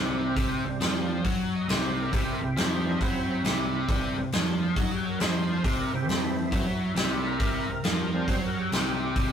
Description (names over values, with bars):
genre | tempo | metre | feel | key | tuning
blues rock power trio and southern rock | 137 BPM | 4/4 | swing 67% on 8ths | C mixolydian | A4 = 440 Hz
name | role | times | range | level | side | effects
overdriven tonewheel organ | sustained chords | 0.0-9.3 s | E3 to Eb5 | -33 LUFS | right 2 dB | chorus vibrato, slow rotary speaker
biting overdriven guitar | riff | 0.0-9.3 s | C3 to F#3 | -28 LUFS | equal | none
vintage muted picked electric bass | bass | 0.0-9.3 s | C2 to F#2 | -37 LUFS | equal | none
big rock drum kit | drums | 0.4-9.3 s | hi-hat, kick drum, snare drum | -28 LUFS | equal | none
room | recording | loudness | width
wet studio reverb, RT60 0.6 s | rough rehearsal-room recording, warm saturation | -24 LUFS | side -8 dB against mid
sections
0.0-9.3 A section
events
tonewheel organ solo 0.0-9.3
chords
0.0 C